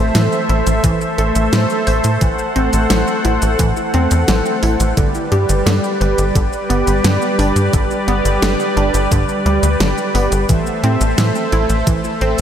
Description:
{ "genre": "synthwave", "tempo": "87 BPM", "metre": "4/4", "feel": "straight", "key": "unclear", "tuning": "A4 = 440 Hz", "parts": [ { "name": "soft supersaw", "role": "sustained chords", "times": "0.0-12.4 s", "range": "G3 to F#5", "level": "-17 LUFS", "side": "equal", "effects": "sidechain pumping" }, { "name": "analog pluck", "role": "arpeggios", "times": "0.0-12.4 s", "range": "D3 to C5", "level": "-22 LUFS", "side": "right 1 dB", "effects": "chorus, tape echo" }, { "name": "tight sequencer bass", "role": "bass", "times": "0.0-12.4 s", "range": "G1 to A2", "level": "-17 LUFS", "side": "equal", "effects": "sidechain pumping" }, { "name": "pop drum kit", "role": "drums", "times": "0.1-12.4 s", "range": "cabasa, hi-hat, snare drum", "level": "-22 LUFS", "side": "equal", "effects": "studio reverb" }, { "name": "electronic kick drum", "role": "drums", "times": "0.8-12.0 s", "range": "none", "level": "-17 LUFS", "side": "equal", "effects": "overdrive, studio reverb" } ], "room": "moderate lush hall reverb, RT60 3.2 s", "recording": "dreamy mix soaked in reverb", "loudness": "-13 LUFS", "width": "side -9 dB against mid", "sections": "0.0-12.4 A section", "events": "none", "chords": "0.0 Am; 5.0 G; 10.5 Am" }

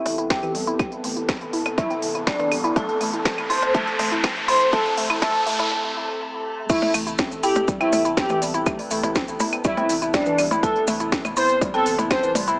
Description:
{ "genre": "melodic techno", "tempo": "122 BPM", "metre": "4/4", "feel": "straight", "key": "A minor", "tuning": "A4 = 439 Hz", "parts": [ { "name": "analog synth brass", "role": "melody", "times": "0.0-12.3 s", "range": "D4 to C5", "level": "-24 LUFS", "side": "equal", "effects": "chorus, sidechain pumping, dub echo" }, { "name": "dark detuned synth bell", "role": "second line", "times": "0.0-12.3 s", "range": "D5 to C6", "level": "-27 LUFS", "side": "equal", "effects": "chorus, sidechain pumping, low-pass filter, tape echo" }, { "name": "evolving wavetable pad", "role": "sustained chords", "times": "0.0-12.6 s", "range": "C3 to A4", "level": "-30 LUFS", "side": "equal", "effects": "chorus, built-in reverb, sidechain pumping" }, { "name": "woody wave-folded pluck", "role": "arpeggios", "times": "0.0-12.6 s", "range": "E3 to E4", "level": "-27 LUFS", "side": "equal", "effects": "chorus, sidechain pumping, dub echo" }, { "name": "riser", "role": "sound effects", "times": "1.0-5.7 s", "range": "none", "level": "-28 LUFS", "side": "equal", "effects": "none" }, { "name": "round analog bass", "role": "bass", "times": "0.1-12.6 s", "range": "A1", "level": "-42 LUFS", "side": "equal", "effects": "sidechain pumping" }, { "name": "techno drum kit", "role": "drums", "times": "0.1-12.6 s", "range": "claves, crash cymbal, hi-hat, percussion blips, snare drum", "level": "-26 LUFS", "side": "equal", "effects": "high-pass filter on hats, high-pass filter on perc, high-pass filter on snare, high-pass filter on cymbals, high-pass filter on room, tape echo" }, { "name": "electronic kick drum", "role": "drums", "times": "0.3-12.2 s", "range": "none", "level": "-24 LUFS", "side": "equal", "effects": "none" }, { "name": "maracas", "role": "percussion", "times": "6.7-12.6 s", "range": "none", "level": "-33 LUFS", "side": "equal", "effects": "none" } ], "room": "moderate plate reverb, RT60 2.0 s", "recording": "echo-heavy mix, high-pass filter, small speaker sound", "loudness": "-19 LUFS", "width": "side -24 dB against mid", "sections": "0.0-6.7 A section; 6.7-12.6 B section", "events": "build-up 0.0-6.7; filter sweep on synth pluck 0.0-6.7; filter sweep on analog polysynth 0.0-6.7; filter sweep on synth bell 0.0-6.7; filter sweep on ambient pad 0.0-6.7; riser 1.0-5.7; break 5.7-6.7; drop 6.7-12.6", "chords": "0.0 Amadd9" }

